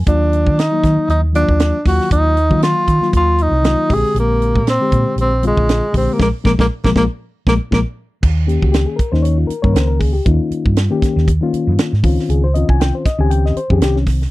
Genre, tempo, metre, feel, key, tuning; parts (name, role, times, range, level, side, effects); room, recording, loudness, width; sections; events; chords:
electric jazz fusion; 118 BPM; 4/4; swing 55% on 16ths; Bb mixolydian, Eb mixolydian from 8.2 s; A4 = 441 Hz
mellow reed electric piano; accompaniment; 0.0-14.2 s; D3 to Ab5; -19 LUFS; left 4 dB
hollow-body short-scale fingered electric bass; bass; 0.0-14.2 s; Bb1 to Eb3; -16 LUFS; equal
mellow tenor saxophone; melody; 0.1-7.8 s; Ab3 to Ab4; -16 LUFS; equal
tight funk drum kit; drums; 0.1-14.3 s; crash cymbal, hi-hat, kick drum, snare drum; -18 LUFS; right 1 dB
little or no reverb; dry, close 1970s-style studio recording; -13 LUFS; side -18 dB against mid
0.0-8.2 A section; 8.2-14.3 B section
band accent 6.2-8.2; drum fill 8.0
0.1 Ebmadd9; 3.9 Bb13; 8.2 Eb7; 12.0 Dbmaj9